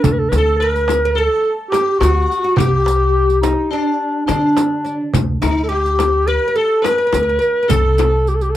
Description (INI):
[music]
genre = Turkish makam ensemble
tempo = 212 BPM (eighths)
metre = 9/8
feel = straight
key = D makam hicaz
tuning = A4 = 439 Hz
[part]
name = mellow clarinet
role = melody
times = 0.0-8.6 s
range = D4 to B4-37c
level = -17 LUFS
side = equal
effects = none
[part]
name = oud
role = second line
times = 0.0-8.2 s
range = D4 to B4-40c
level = -23 LUFS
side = right 4 dB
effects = none
[part]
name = sitar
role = second line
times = 0.0-8.2 s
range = D4 to B4-40c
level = -22 LUFS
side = left 7 dB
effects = none
[part]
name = upright bass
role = bass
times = 0.0-8.6 s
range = C2 to D3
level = -19 LUFS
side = equal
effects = none
[part]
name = darbuka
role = percussion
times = 0.0-8.5 s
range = none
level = -21 LUFS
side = right 3 dB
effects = none
[part]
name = riq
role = percussion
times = 0.0-8.5 s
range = none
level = -28 LUFS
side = right 11 dB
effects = none
[part]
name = frame drum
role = percussion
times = 0.1-8.1 s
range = none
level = -23 LUFS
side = left 9 dB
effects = none
[sound]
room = little or no reverb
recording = dry, close 1970s-style studio recording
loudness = -13 LUFS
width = side -12 dB against mid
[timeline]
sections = 0.0-8.6 A section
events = none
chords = none